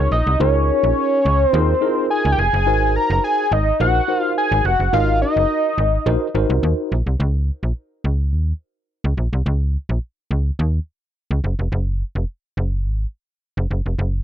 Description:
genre	early-eighties boogie funk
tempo	106 BPM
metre	4/4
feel	straight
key	unclear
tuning	A4 = 440 Hz
part	fat analog lead	melody	0.0-6.3 s	Db5 to Bb5	-18 LUFS	equal	phaser
part	tine electric piano	accompaniment	0.0-6.9 s	Eb4 to Eb5	-22 LUFS	left 1 dB	overdrive, fast stereo tremolo
part	slap-like FM bass	bass	0.0-14.2 s	F1 to Eb2	-18 LUFS	equal	none
room	little or no reverb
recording	dry, close 1970s-style studio recording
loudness	-17 LUFS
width	side -10 dB against mid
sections	0.0-7.2 A section; 7.2-14.2 B section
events	none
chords	0.0 Db6; 2.7 Ab9; 7.2 N.C.

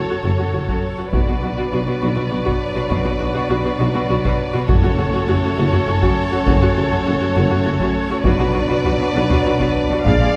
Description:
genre	cinematic, epic orchestral film score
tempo	67 BPM (dotted quarters)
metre	6/8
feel	straight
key	B minor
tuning	A4 = 441 Hz
part	warm symphonic violin section	melody	0.0-10.4 s	C#5 to E#5	-29 LUFS	equal	none
part	warm symphonic violin section	second line	0.0-10.4 s	A4 to D5	-29 LUFS	equal	none
part	warm French horn section	sustained chords	0.0-10.4 s	F#3 to A4	-25 LUFS	equal	none
part	warm symphonic viola section	accompaniment	0.1-10.3 s	F#4 to G#4	-26 LUFS	equal	none
part	clear symphonic cello section	bass	0.1-10.3 s	F#2 to B2	-26 LUFS	equal	none
part	dark tuba	bass	0.2-10.1 s	F#1 to B1	-28 LUFS	equal	none
part	rich symphonic double bass section	bass	0.2-10.1 s	F#1 to B1	-27 LUFS	equal	none
part	taiko ensemble	drums	0.7-10.4 s	none	-25 LUFS	equal	none
part	timpani	percussion	1.1-2.0, 4.7-5.5 s	F#2 to B2	-32 LUFS	equal	none
room	wet concert hall reverb, RT60 1.9 s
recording	recorded in a church or concert hall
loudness	-18 LUFS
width	mono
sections	0.0-10.4 A section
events	none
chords	0.0 F#m; 1.1 Bm; 4.7 F#m; 8.2 Bm

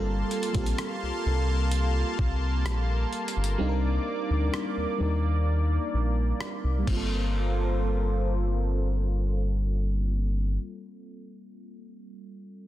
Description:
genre	contemporary R&B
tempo	64 BPM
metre	4/4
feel	straight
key	G minor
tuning	A4 = 440 Hz
part	FM electric piano with soft pad layer	accompaniment	0.0-12.7 s	G3 to Bb4	-33 LUFS	right 1 dB	chorus, tremolo, low-pass filter
part	lush unison pad	sustained chords	0.0-10.6 s	Bb3 to D6	-34 LUFS	equal	chorus, sidechain pumping, low-pass filter
part	round analog bass	bass	0.0-10.6 s	G1 to Eb2	-26 LUFS	equal	none
part	dusty soul sampler-style drum kit	drums	0.3-7.1 s	crash cymbal, hi-hat, kick drum, rim click	-33 LUFS	equal	none
room	little or no reverb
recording	dense, heavily limited modern master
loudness	-25 LUFS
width	side -14 dB against mid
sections	0.0-7.3 A section; 7.3-11.1 B section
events	filter sweep 0.0-7.3; kick muted 3.6-7.3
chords	0.0 Gm11; 3.6 Cm9; 6.9 Gm11

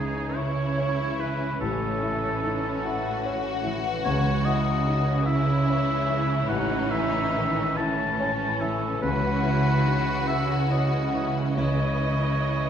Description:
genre	cinematic, emotional film score for orchestra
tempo	48 BPM (dotted quarters)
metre	6/8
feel	rubato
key	C# minor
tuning	A4 = 441 Hz
part	warm oboe	second line	0.0-12.7 s	G#4 to A5	-29 LUFS	equal	none
part	warm symphonic violin section	second line	0.0-12.7 s	C#4 to F#4	-32 LUFS	left 5 dB	none
part	warm grand piano	accompaniment	0.0-12.7 s	A1 to D#5	-31 LUFS	left 1 dB	none
part	warm studio viola section	accompaniment	0.0-12.7 s	E3 to D#5	-31 LUFS	right 2 dB	none
part	concert harp	arpeggios	0.0-12.7 s	A2 to D#5	-30 LUFS	left 1 dB	none
part	warm symphonic cello section	bass	0.0-12.7 s	A2 to C#3	-29 LUFS	right 3 dB	none
room	wet recital hall reverb, RT60 1.5 s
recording	recorded in a church or concert hall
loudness	-22 LUFS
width	side -8 dB against mid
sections	0.0-12.7 A section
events	none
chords	0.0 C#m; 1.6 A; 4.0 C#m; 6.5 A; 9.0 C#madd9

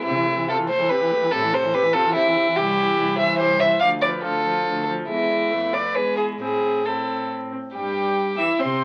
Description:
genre	quick classical-period movement for string quartet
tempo	142 BPM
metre	3/4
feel	rubato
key	A minor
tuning	A4 = 443 Hz
part	dark violin	melody	0.0-8.8 s	B3 to E6	-33 LUFS	equal	none
part	rich violin	second line	0.0-8.8 s	E4 to F5	-22 LUFS	equal	none
part	warm viola	accompaniment	0.0-8.8 s	C3 to E4	-30 LUFS	equal	none
part	dark cello	bass	0.1-8.8 s	C2 to E3	-34 LUFS	equal	none
room	wet small room reverb, RT60 0.5 s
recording	very old 78 rpm record, vinyl crackle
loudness	-21 LUFS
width	mono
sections	0.0-7.7 A section; 7.7-8.8 B section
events	none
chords	0.1 Am/C; 1.3 Am; 2.6 C; 3.8 Dm; 5.1 E; 5.5 Dm/F; 6.0 E; 6.4 Am; 7.7 C/G

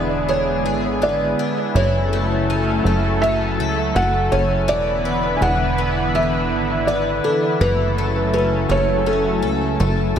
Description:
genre	dream pop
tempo	82 BPM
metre	4/4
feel	straight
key	unclear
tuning	A4 = 438 Hz
part	felt-muted upright piano	melody	0.0-10.2 s	A4 to G#5	-22 LUFS	right 1 dB	tape echo
part	lush unison pad	sustained chords	0.0-10.2 s	C#3 to B4	-22 LUFS	right 1 dB	chorus
part	picked twelve-string acoustic guitar	arpeggios	0.0-10.2 s	E3 to A4	-25 LUFS	left 4 dB	analog chorus, tape echo
part	plucky analog bass	bass	0.0-10.2 s	E1 to C#2	-22 LUFS	equal	none
room	moderate lush hall reverb, RT60 2.5 s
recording	none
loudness	-16 LUFS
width	side -8 dB against mid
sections	0.0-10.2 A section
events	none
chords	0.0 E7; 1.8 F#m7; 4.7 E7; 7.6 F#m7

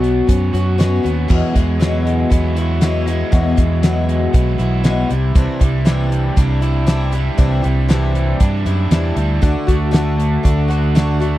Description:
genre	folk rock and heartland rock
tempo	118 BPM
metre	4/4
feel	straight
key	unclear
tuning	A4 = 442 Hz
part	picked twelve-string acoustic guitar	accompaniment	0.0-11.4 s	E2 to F#4	-21 LUFS	left 4 dB	none
part	crunchy overdriven guitar	riff	0.0-11.4 s	E2 to F#4	-22 LUFS	right 3 dB	none
part	fingered electric bass	bass	0.0-11.4 s	B1 to G2	-17 LUFS	equal	none
part	damped 70s drum kit	drums	0.0-11.3 s	crash cymbal, hi-hat, kick drum, snare drum	-14 LUFS	equal	none
part	hand-pumped harmonium	sustained chords	9.4-11.4 s	A3 to A4	-29 LUFS	right 3 dB	none
room	little or no reverb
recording	dry, close 1970s-style studio recording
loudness	-13 LUFS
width	side -15 dB against mid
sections	0.0-1.3 A section; 1.3-11.4 A section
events	none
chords	0.0 Bsus2; 1.3 Eadd9; 5.1 Cadd9; 9.4 D

